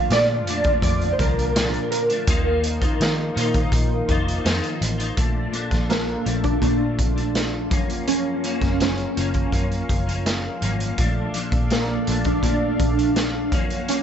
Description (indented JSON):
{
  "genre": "indie pop, bedroom pop",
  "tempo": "83 BPM",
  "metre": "4/4",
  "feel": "straight",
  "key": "Bb major",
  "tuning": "A4 = 441 Hz",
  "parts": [
    { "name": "warbly lo-fi synth keys", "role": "melody", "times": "0.0-14.0 s", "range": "Bb3 to F5", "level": "-24 LUFS", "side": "right 1 dB", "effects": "ensemble chorus, tape echo" },
    { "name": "clean electric guitar", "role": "accompaniment", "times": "0.0-14.0 s", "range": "Gb2 to F4", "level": "-28 LUFS", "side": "left 2 dB", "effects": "ensemble chorus, vibrato effect" },
    { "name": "warm analog pad", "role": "sustained chords", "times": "0.0-14.0 s", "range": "Bb2 to Gb5", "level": "-32 LUFS", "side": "right 1 dB", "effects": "chorus, tremolo" },
    { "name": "vintage muted picked electric bass", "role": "bass", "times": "0.1-14.0 s", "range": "F1 to Eb3", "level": "-25 LUFS", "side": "equal", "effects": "none" },
    { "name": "raw garage drum kit", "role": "drums", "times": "0.1-14.0 s", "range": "hi-hat, kick drum, snare drum", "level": "-24 LUFS", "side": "equal", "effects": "none" }
  ],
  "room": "small room reverb",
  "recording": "nothing above 7.9 kHz",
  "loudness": "-19 LUFS",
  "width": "side -8 dB against mid",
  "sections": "0.0-5.2 A section; 5.2-14.0 B section",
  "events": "none",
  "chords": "0.0 Bbmaj7; 2.3 Ebsus2; 5.2 Bbmaj7; 7.7 Gbmaj7; 11.0 Bbmaj7; 13.5 Gbmaj7",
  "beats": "0.10 0.83 1.55 | 2.28 3.00 3.73 4.45 | 5.18 5.90 6.63 7.35 | 8.08 8.80 9.53 10.26 | 10.98 11.71 12.44 13.16 | 13.89"
}